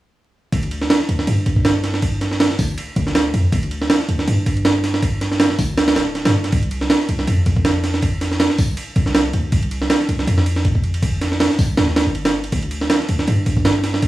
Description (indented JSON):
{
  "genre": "drum and bass, jungle",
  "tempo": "160 BPM",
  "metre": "4/4",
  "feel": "swing 55% on 16ths",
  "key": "unclear",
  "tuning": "A4 = 440 Hz",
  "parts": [
    { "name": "warm 808-style bass", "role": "bass", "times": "0.5-14.1 s", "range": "D1 to G2", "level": "-20 LUFS", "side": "equal", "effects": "none" },
    { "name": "breakbeat sampler-style drum kit", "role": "drums", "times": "0.5-14.1 s", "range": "hi-hat, kick drum, ride cymbal, snare drum", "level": "-17 LUFS", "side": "right 1 dB", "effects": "none" }
  ],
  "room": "light reverb",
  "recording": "vinyl crackle, small room ambience",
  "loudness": "-16 LUFS",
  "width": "side -15 dB against mid",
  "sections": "0.5-14.1 A section",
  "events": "none",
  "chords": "none"
}